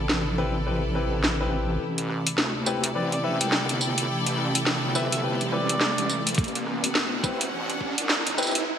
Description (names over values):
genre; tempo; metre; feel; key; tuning
glitch hop; 105 BPM; 4/4; swing 60% on 16ths; A dorian; A4 = 441 Hz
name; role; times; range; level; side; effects
warbly tape-like pad; sustained chords; 0.0-8.6 s; C3 to B4; -33 LUFS; right 1 dB; chorus, built-in reverb, sidechain pumping
wobble bass; bass; 0.0-8.6 s; G1 to E2; -30 LUFS; equal; chorus, tube saturation, high-pass filter
bright symphonic string section; texture; 0.0-8.7 s; E4 to G5; -32 LUFS; left 2 dB; sidechain pumping
drum and bass drum kit; drums; 0.1-8.6 s; hi-hat, rim click, snare drum, tambourine; -25 LUFS; equal; high-pass filter on snare, high-pass filter on hats, high-pass filter on perc, high-pass filter on room, gated reverb
clear grand piano; stabs; 0.4-8.5 s; C4 to B4; -31 LUFS; left 3 dB; sidechain pumping, digital delay
riser; sound effects; 4.5-8.7 s; none; -32 LUFS; right 2 dB; none
overdriven harmonica; melody; 3.0-6.3 s; D5 to G5; -32 LUFS; right 1 dB; digital delay
electronic kick drum; drums; 6.4-7.9 s; none; -26 LUFS; equal; none
room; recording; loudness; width
moderate lush hall reverb, RT60 1.9 s; bright 1980s-style digital production, high-pass filter; -23 LUFS; side -8 dB against mid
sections
0.0-1.8 A section; 1.8-8.8 B section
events
filter sweep on ambient pad 0.0-1.8, 1.8-8.8; build-up 1.8-8.8; riser 4.5-8.7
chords
0.0 Am7